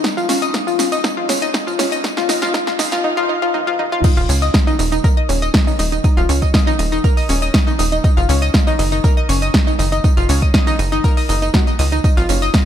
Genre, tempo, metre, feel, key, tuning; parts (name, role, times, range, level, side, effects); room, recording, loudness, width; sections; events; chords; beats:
progressive house; 120 BPM; 4/4; straight; Eb minor; A4 = 441 Hz
analog pluck; arpeggios; 0.0-12.6 s; Db4 to Eb6; -18 LUFS; left 1 dB; chorus, sidechain pumping, ping-pong delay
deep house drum kit; drums; 0.0-12.6 s; crash cymbal, hi-hat, ride cymbal, snare drum, tambourine, toms; -21 LUFS; equal; overdrive
electronic kick drum; drums; 0.0-12.6 s; -15 LUFS; equal; overdrive, high-pass filter on kick, high-pass filter on room
tight sequencer bass; bass; 4.2-12.5 s; Eb1 to Db2; -18 LUFS; equal; sidechain pumping
moderate lush hall reverb, RT60 2.2 s; dark, warm production, high-pass filter; -14 LUFS; side -10 dB against mid
0.0-4.0 A section; 4.0-12.7 B section
build-up 0.0-4.0; drum fill 0.0-3.0, 3.5-4.0; filter sweep on synth arpeggio sound 0.0-4.0; drop 4.0-12.7
0.0 Dbadd9; 4.0 Eb5; 8.0 Gb; 12.0 Ab5
| 0.04 0.54 1.04 1.54 | 2.04 2.54 3.04 3.54 | 4.04 4.54 5.04 5.54 | 6.04 6.54 7.04 7.54 | 8.04 8.54 9.04 9.54 | 10.04 10.54 11.04 11.54 | 12.04 12.54